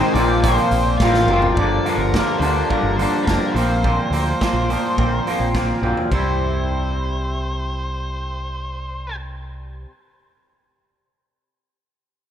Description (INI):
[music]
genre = indie rock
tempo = 106 BPM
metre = 4/4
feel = straight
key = C mixolydian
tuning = A4 = 440 Hz
[part]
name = octave-fuzz lead guitar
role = melody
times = 0.0-9.2 s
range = F4 to D5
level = -28 LUFS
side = equal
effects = distortion, slapback echo
[part]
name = twangy electric guitar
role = riff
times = 0.0-9.9 s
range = G2 to E4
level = -19 LUFS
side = equal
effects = double-tracked left and right
[part]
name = overdriven picked electric bass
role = bass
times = 0.1-9.8 s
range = F1 to D2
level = -23 LUFS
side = equal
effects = none
[part]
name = raw garage drum kit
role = drums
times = 0.2-6.2 s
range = crash cymbal, hi-hat, kick drum, snare drum, toms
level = -25 LUFS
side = equal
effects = none
[sound]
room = light reverb, small room ambience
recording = rough home demo mix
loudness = -17 LUFS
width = side -9 dB against mid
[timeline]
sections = 0.0-1.6 A section; 1.6-6.1 B section; 6.1-8.4 C section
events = drum fill 1.0-1.6, 5.5-6.1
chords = 0.2 Bbsus2; 1.6 Gm7; 3.5 Bbsus2; 6.1 C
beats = 0.44 1.00 | 1.57 2.13 2.70 3.27 | 3.83 4.40 4.97 5.54 | 6.11 6.67 7.24 7.81